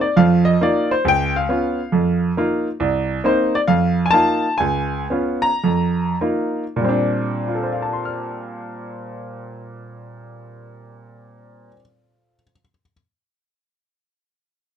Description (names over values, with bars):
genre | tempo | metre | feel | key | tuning
solo jazz | 95-139 BPM | 4/4 | swing 66% on 8ths, rubato | Bb major | A4 = 440 Hz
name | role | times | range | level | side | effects
clear baby grand piano | solo | 0.0-12.9 s | C2 to F6 | -17 LUFS | right 1 dB | none
room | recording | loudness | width
light reverb | close, detailed microphones | -17 LUFS | side -8 dB against mid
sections
0.0-6.8 A section; 6.8-11.8 B section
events
slowing down 2.8-6.8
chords
0.2 F7sus4; 1.1 Db7; 1.9 F7sus4; 2.8 Cm7; 3.7 F7sus4; 4.6 Db7; 5.6 F7sus4; 6.8 Bb69